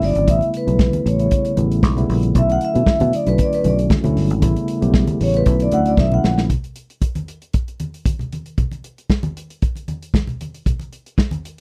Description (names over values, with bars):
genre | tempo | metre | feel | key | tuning
disco | 116 BPM | 4/4 | straight | B minor | A4 = 441 Hz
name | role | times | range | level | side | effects
vibraphone with soft mallets | melody | 0.0-6.4 s | B4 to F#5 | -22 LUFS | equal | none
mellow tine electric piano | accompaniment | 0.0-6.5 s | C#3 to G4 | -24 LUFS | equal | none
fingered electric bass | bass | 0.0-6.5 s | G1 to B2 | -21 LUFS | equal | none
warm soul drum kit | drums | 0.0-11.6 s | hi-hat, kick drum, snare drum | -21 LUFS | equal | none
congas | percussion | 0.3-11.4 s | none | -29 LUFS | equal | none
room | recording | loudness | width
little or no reverb | dry, close 1970s-style studio recording | -18 LUFS | mono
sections
0.0-6.5 A section; 6.5-11.6 B section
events
vibraphone solo 0.0-6.5; drum fill 6.0-6.5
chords
0.3 A7; 2.4 Bm11; 4.4 A7; 5.5 Bm11; 6.5 N.C.